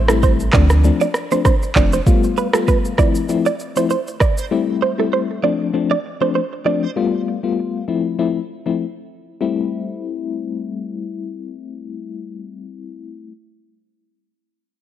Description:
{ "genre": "afrobeats", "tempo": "98 BPM", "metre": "4/4", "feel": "swing 55% on 16ths", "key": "A minor", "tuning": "A4 = 439 Hz", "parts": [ { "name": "FM electric piano with tremolo", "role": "accompaniment", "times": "0.0-13.3 s", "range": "F3 to F4", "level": "-21 LUFS", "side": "left 6 dB", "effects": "cassette tape" }, { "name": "clean 808-style bass", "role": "bass", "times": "0.0-2.0 s", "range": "F1 to D2", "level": "-15 LUFS", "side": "right 1 dB", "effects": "none" }, { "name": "direct-recorded clean electric guitar", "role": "riff", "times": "0.1-6.9 s", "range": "A4 to D5", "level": "-21 LUFS", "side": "right 8 dB", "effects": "analog chorus, cassette tape, tape echo" }, { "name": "afro-pop drum kit", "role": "drums", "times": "0.1-4.5 s", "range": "handclaps, kick drum, rim click, shaker", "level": "-17 LUFS", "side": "right 1 dB", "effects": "none" } ], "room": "light reverb, digital ambience", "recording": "home recording on cassette", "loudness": "-16 LUFS", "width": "side -11 dB against mid", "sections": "0.0-9.4 A section; 9.4-11.9 B section", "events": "none", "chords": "0.0 Am7; 0.5 Dm7; 2.1 G9; 3.0 Fmaj7; 4.5 Am7; 5.4 Dm7; 7.0 G9; 7.9 Fmaj7; 9.4 Am7" }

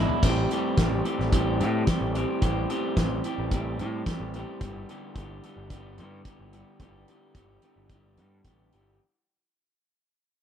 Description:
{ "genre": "indie rock", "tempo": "109 BPM", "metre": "4/4", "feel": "straight", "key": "unclear", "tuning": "A4 = 440 Hz", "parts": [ { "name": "electric guitar through a small old amp", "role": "riff", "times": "0.0-9.0 s", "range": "E2 to G4", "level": "-29 LUFS", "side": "right 1 dB", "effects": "spring reverb" }, { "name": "growling picked electric bass", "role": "bass", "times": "0.0-9.0 s", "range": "G1 to A2", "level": "-30 LUFS", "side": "equal", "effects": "overdrive" }, { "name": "loose indie drum kit", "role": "drums", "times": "0.1-8.9 s", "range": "hi-hat, kick drum, snare drum, splash cymbal, toms", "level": "-27 LUFS", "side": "equal", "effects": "none" } ], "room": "light reverb", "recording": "none", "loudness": "-24 LUFS", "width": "side -9 dB against mid", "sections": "0.0-9.0 A section", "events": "fade-out 0.0-9.0; drum fill 0.0", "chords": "0.2 Am7; 4.6 Em7/G" }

